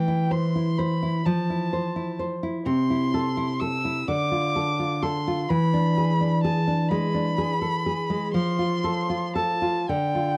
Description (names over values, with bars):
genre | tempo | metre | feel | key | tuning
romantic duo for violin and classical guitar | 42 BPM (dotted quarters) | 6/8 | rubato | unclear | A4 = 440 Hz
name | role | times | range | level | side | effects
rich violin | melody | 0.0-10.4 s | G5 to E6 | -31 LUFS | equal | none
nylon-string guitar | accompaniment | 0.0-10.4 s | C3 to C5 | -26 LUFS | equal | none
room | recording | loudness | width
moderate studio reverb, RT60 0.5 s | dark, warm production | -25 LUFS | mono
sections
0.0-10.4 A section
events
none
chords
0.0 C/E; 1.3 Fmaj7; 2.7 Am/C; 4.1 Dm; 5.5 E7; 8.3 F